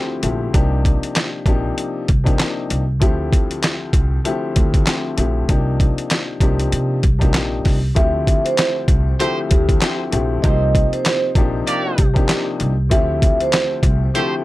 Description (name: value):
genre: hip hop, boom-bap hip-hop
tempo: 97 BPM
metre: 4/4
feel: swing 58% on 16ths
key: D minor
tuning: A4 = 440 Hz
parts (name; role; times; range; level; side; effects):
- dark grand piano; accompaniment; 0.0-14.4 s; D2 to G4; -23 LUFS; left 3 dB; cassette tape, high-pass filter, low-pass filter
- upright bass; bass; 0.2-14.1 s; Bb1 to C3; -20 LUFS; equal; none
- boom bap sampler-style drum kit; drums; 0.2-14.3 s; handclaps, hi-hat, kick drum, snare drum; -17 LUFS; equal; none
- vibraphone with soft mallets; melody; 8.0-13.7 s; G4 to E5; -22 LUFS; right 2 dB; high-pass filter, low-pass filter, ping-pong delay
- clear horn section; stabs; 9.2-14.3 s; A3 to D5; -24 LUFS; right 2 dB; high-pass filter, low-pass filter, ping-pong delay
room: little or no reverb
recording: none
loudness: -15 LUFS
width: side -17 dB against mid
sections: 0.0-8.0 A section; 8.0-14.4 B section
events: none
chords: 0.0 Dm11; 0.5 Cm11; 3.0 Dm11; 5.5 Cm11; 8.0 Dm11; 10.4 Cm11; 12.9 Dm11